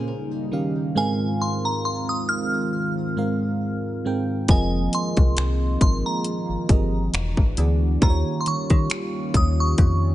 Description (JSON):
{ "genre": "contemporary R&B", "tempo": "68 BPM", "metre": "4/4", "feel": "swing 54% on 16ths", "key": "unclear", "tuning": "A4 = 440 Hz", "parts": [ { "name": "FM electric piano", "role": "accompaniment", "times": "0.0-10.1 s", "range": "Ab2 to G5", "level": "-26 LUFS", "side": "right 2 dB", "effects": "chorus" }, { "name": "chorused pulse-width pad", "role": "sustained chords", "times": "0.0-10.1 s", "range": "Db3 to F#4", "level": "-30 LUFS", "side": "left 2 dB", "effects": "none" }, { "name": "glassy synth bell", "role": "melody", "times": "1.0-10.1 s", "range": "Ab5 to F6", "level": "-28 LUFS", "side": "right 1 dB", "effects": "chorus, tremolo, digital delay" }, { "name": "metallic FM bass", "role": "bass", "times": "4.5-10.1 s", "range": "E1 to Eb3", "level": "-22 LUFS", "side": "left 1 dB", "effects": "none" }, { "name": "trap drum kit", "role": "drums", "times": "4.5-10.0 s", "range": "finger snaps, hi-hat, kick drum", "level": "-19 LUFS", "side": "left 1 dB", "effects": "overdrive" } ], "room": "digital ambience", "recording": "nothing above 10.5 kHz", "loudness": "-20 LUFS", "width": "side -14 dB against mid", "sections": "0.0-10.1 A section", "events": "none", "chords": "0.1 Eb7; 1.0 Ab6; 4.5 Fm11; 7.1 E9; 8.0 Eb9", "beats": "0.08 | 0.96 1.84 2.72 3.61 | 4.49 5.37 6.25 7.14 | 8.02 8.90 9.78" }